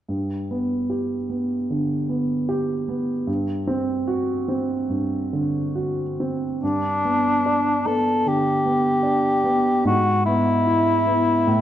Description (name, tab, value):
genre	classical, romantic duo for cor anglais and grand piano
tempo	75 BPM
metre	4/4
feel	rubato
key	G major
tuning	A4 = 439 Hz
part	warm baby grand piano	accompaniment	0.1-11.6 s	G2 to G4	-22 LUFS	right 1 dB	none
part	dark cor anglais	melody	6.6-11.6 s	D4 to A4	-20 LUFS	left 1 dB	none
room	wet scoring stage reverb, RT60 1.6 s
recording	dark, warm production, nothing above 10.8 kHz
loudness	-20 LUFS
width	side -11 dB against mid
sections	0.1-6.6 A section; 6.6-11.6 B section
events	none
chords	0.1 G; 3.3 D7/G; 6.6 G; 9.9 E/G#